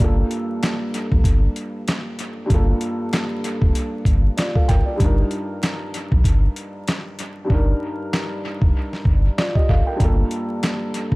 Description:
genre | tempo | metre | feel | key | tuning
hip hop, boom-bap hip-hop | 96 BPM | 4/4 | swing 54% on 16ths | G minor | A4 = 440 Hz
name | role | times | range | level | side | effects
dark upright piano | accompaniment | 0.0-11.2 s | G2 to G5 | -25 LUFS | equal | cassette tape, high-pass filter, low-pass filter
sub bass with octave | bass | 0.0-11.2 s | F1 to Bb1 | -18 LUFS | equal | none
boom bap sampler-style drum kit | drums | 0.0-11.2 s | handclaps, hi-hat, kick drum, snare drum | -20 LUFS | equal | dub echo
room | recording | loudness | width
little or no reverb | echo-heavy mix, vinyl crackle | -18 LUFS | side -23 dB against mid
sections
0.0-11.2 A section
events
hi-hats muted 7.5-10.0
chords
0.0 Gm7; 5.0 F13sus4; 10.0 Gm7

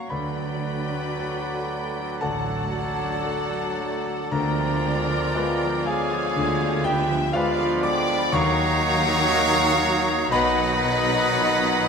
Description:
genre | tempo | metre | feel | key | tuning
classical | 53-62 BPM | 4/4 | rubato | unclear | A4 = 441 Hz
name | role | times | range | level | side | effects
clear concert grand piano | melody | 0.0-11.9 s | B1 to D6 | -27 LUFS | left 2 dB | none
clear studio violin section | melody | 0.0-11.9 s | D5 to B5 | -31 LUFS | left 5 dB | none
clear oboe | second line | 0.0-11.9 s | C#5 to D#5 | -34 LUFS | right 3 dB | none
rich studio violin section | second line | 0.0-11.9 s | F5 to D6 | -33 LUFS | left 3 dB | none
silver concert flute | second line | 0.0-11.9 s | B4 to G5 | -31 LUFS | equal | none
clear studio viola section | accompaniment | 0.0-11.9 s | D3 to F#4 | -32 LUFS | right 1 dB | none
warm bassoon | accompaniment | 0.0-11.9 s | F3 to F#3 | -32 LUFS | right 2 dB | none
clear trumpet | stabs | 0.0-11.9 s | F4 to D5 | -28 LUFS | right 2 dB | none
mellow French horn section | sustained chords | 0.1-11.9 s | A3 to F4 | -32 LUFS | left 4 dB | none
warm trombone section | sustained chords | 0.1-11.9 s | D3 to Ab3 | -33 LUFS | right 4 dB | none
clear studio double bass section | bass | 0.1-11.9 s | A1 to D#2 | -35 LUFS | right 3 dB | none
dark studio cello section | bass | 0.1-11.9 s | A2 to D#3 | -33 LUFS | right 4 dB | none
room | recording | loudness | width
wet scoring stage reverb, RT60 1.9 s | minimal, uncompressed stereo recording | -20 LUFS | side -6 dB against mid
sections
0.1-11.9 A section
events
none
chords
0.1 D; 4.3 Ddim7; 8.3 D#m; 10.3 B

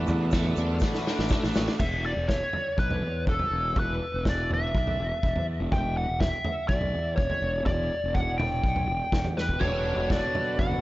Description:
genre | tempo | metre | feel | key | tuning
psychedelic rock | 123 BPM | 4/4 | straight | unclear | A4 = 440 Hz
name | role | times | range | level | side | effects
pedal harmonium | sustained chords | 0.0-1.8, 9.6-10.8 s | D4 to F#5 | -36 LUFS | right 6 dB | none
crunchy overdriven guitar | riff | 0.0-1.8, 9.6-10.8 s | B2 to F#4 | -30 LUFS | left 1 dB | rotary speaker
fuzz fingered electric bass | bass | 0.0-10.8 s | E1 to E2 | -30 LUFS | equal | overdrive
vintage drum kit | drums | 0.1-10.8 s | crash cymbal, kick drum, snare drum, toms | -29 LUFS | equal | none
tube shaker | percussion | 0.1-1.7 s | none | -53 LUFS | left 8 dB | none
biting lead guitar | melody | 1.8-10.8 s | A4 to G5 | -29 LUFS | equal | wah, overdrive, tape echo
room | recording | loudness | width
small room reverb | echo-heavy mix, nothing above 7.6 kHz | -24 LUFS | side -17 dB against mid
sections
0.0-1.8 A section; 1.8-10.8 B section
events
drum fill 0.8-1.8, 9.4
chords
0.0 Bm7; 1.8 N.C.; 9.6 Bm7/E

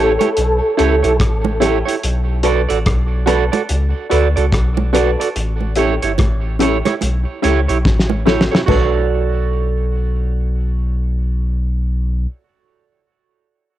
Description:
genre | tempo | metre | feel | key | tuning
roots reggae | 72 BPM | 4/4 | swing 61% on 16ths | B minor | A4 = 438 Hz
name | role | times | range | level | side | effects
mellow tonewheel organ | melody | 0.0-1.2 s | A4 | -18 LUFS | equal | chorus vibrato, slow rotary speaker, cassette tape, tape echo
clean electric guitar | accompaniment | 0.0-12.3 s | E4 to D5 | -19 LUFS | right 8 dB | cassette tape, tape echo
filtered dub chord stab | stabs | 0.0-12.3 s | C#4 to B4 | -22 LUFS | left 8 dB | phaser, cassette tape
soft dub sub bass | bass | 0.0-12.3 s | G1 to D2 | -18 LUFS | left 1 dB | none
cloth-damped thuddy drum kit | drums | 0.2-8.9 s | hi-hat, kick drum, rim click, snare drum, splash cymbal, toms | -18 LUFS | left 1 dB | none
bongos | percussion | 0.2-9.1 s | none | -22 LUFS | right 7 dB | none
room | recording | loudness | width
light reverb | home recording on cassette | -14 LUFS | side -13 dB against mid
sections
0.0-8.7 A section; 8.7-12.0 B section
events
drum fill 7.9-8.7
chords
0.0 A7; 2.0 Bm7; 5.4 A7; 8.7 Bm7

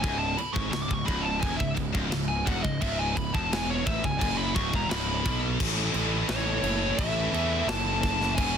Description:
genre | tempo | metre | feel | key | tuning
heavy metal | 86 BPM | 4/4 | straight | unclear | A4 = 440 Hz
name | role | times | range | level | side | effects
high-gain lead guitar | melody | 0.0-8.6 s | C#5 to D6 | -30 LUFS | equal | distortion
heavy high-gain guitar | riff | 0.0-8.6 s | C#2 to E3 | -30 LUFS | equal | distortion
fuzz picked electric bass | bass | 0.0-8.6 s | C#1 to E2 | -31 LUFS | equal | overdrive
tight metal drum kit | drums | 0.0-8.5 s | crash cymbal, kick drum, snare drum | -30 LUFS | equal | none
clear studio string section | sustained chords | 5.6-8.6 s | C#3 to B4 | -38 LUFS | left 1 dB | none
room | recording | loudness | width
light reverb | dense, heavily limited modern master | -24 LUFS | side -8 dB against mid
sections
0.0-5.6 A section; 5.6-8.6 B section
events
lead electric guitar solo 0.0-5.6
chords
0.0 C#m; 5.6 A

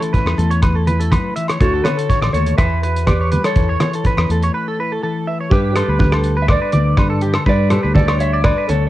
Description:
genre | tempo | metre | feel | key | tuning
highlife guitar band | 123 BPM | 4/4 | straight | unclear | A4 = 441 Hz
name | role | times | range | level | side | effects
mellow electric guitar | melody | 0.0-8.9 s | E4 to E5 | -22 LUFS | equal | warbly pitch drift
mellow electric guitar | accompaniment | 0.0-8.9 s | D3 to B4 | -24 LUFS | left 4 dB | cassette tape
clean electric guitar | arpeggios | 0.0-8.9 s | G4 to E5 | -22 LUFS | right 3 dB | analog chorus, cassette tape, analog delay
cloth-damped thuddy drum kit | drums | 0.0-8.8 s | hi-hat, kick drum, rim click | -18 LUFS | equal | cassette tape
congas | percussion | 0.1-8.8 s | none | -21 LUFS | right 1 dB | none
fingered electric bass | bass | 0.3-8.9 s | A1 to G2 | -18 LUFS | equal | none
agogo bells | percussion | 0.3-8.6 s | none | -29 LUFS | left 3 dB | none
room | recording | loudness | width
light reverb | home recording on cassette | -14 LUFS | side -15 dB against mid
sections
0.0-5.5 A section; 5.5-8.9 B section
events
break 4.5-5.5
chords
0.0 Aadd9/E; 1.6 Dmaj7; 2.6 Emadd9; 3.6 Aadd9/E; 5.5 Gadd9

